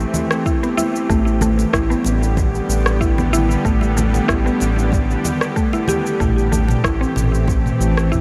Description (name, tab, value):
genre	organic downtempo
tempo	94 BPM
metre	4/4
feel	swing 54% on 16ths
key	unclear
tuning	A4 = 440 Hz
part	bowed-like drone	sustained chords	0.0-8.2 s	D3 to G4	-25 LUFS	equal	built-in reverb, sidechain pumping
part	round analog bass	bass	0.0-8.2 s	A1	-21 LUFS	equal	sidechain pumping
part	organic electronic drum kit	drums	0.0-8.2 s	rim click, shaker, toms	-27 LUFS	equal	none
part	congas	percussion	0.1-7.6 s	none	-30 LUFS	equal	none
part	mallet-like synth pluck	arpeggios	0.5-8.2 s	A3 to G4	-24 LUFS	equal	chorus, tape echo
part	electronic kick drum	drums	0.5-8.2 s	none	-23 LUFS	equal	none
room	moderate huge ambient reverb, RT60 7.1 s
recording	dreamy mix soaked in reverb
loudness	-18 LUFS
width	mono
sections	0.0-8.2 A section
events	none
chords	0.0 Am7; 1.1 G/A; 6.2 Am7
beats	0.46 | 1.10 1.74 2.37 3.01 | 3.65 4.29 4.93 5.57 | 6.20 6.84 7.48 8.12